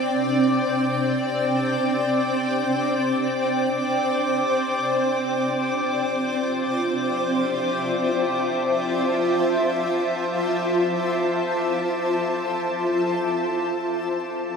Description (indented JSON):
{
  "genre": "ambient",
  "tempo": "free time",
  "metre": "none",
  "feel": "none",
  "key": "unclear",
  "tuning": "A4 = 440 Hz",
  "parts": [
    { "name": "granular cloud pad", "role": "sustained chords", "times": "0.0-14.6 s", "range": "C4 to A5", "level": "-21 LUFS", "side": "equal", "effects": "built-in reverb, lush chorus" },
    { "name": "drifting glass-harmonics texture", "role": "texture", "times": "0.0-14.1 s", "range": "D6", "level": "-31 LUFS", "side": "equal", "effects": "chorus, built-in reverb" }
  ],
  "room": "wet huge ambient reverb, RT60 8.1 s",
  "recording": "dreamy mix soaked in reverb",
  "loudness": "-20 LUFS",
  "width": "side -5 dB against mid",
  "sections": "0.0-14.1 A section",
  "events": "none",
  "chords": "0.0 Csus2; 4.9 Fmaj7"
}